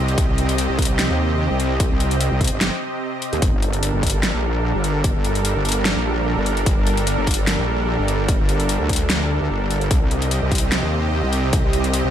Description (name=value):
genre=heavy wobble dubstep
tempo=148 BPM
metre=4/4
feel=swing 54% on 16ths, half-time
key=G minor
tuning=A4 = 440 Hz
part: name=supersaw pad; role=sustained chords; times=0.0-12.1 s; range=C3 to Eb5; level=-23 LUFS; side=right 2 dB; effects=sidechain pumping
part: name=wobble bass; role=bass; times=0.0-12.1 s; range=G1 to Eb2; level=-21 LUFS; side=equal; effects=chorus, overdrive
part: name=dubstep drum kit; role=drums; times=0.1-12.0 s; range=hi-hat, snare drum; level=-24 LUFS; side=left 1 dB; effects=studio reverb
part: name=electronic kick drum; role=drums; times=0.2-11.6 s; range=none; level=-20 LUFS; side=equal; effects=studio reverb
room=little or no reverb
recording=none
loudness=-17 LUFS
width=side -10 dB against mid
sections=0.0-12.1 A section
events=none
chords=0.0 Cm; 3.4 Gmadd9; 9.9 Cm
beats=| 0.18 0.58 0.99 1.39 | 1.80 2.21 2.61 3.02 | 3.42 3.83 4.23 4.64 | 5.04 5.45 5.85 6.26 | 6.67 7.07 7.47 7.88 | 8.29 8.69 9.10 9.50 | 9.91 10.31 10.72 11.12 | 11.53 11.94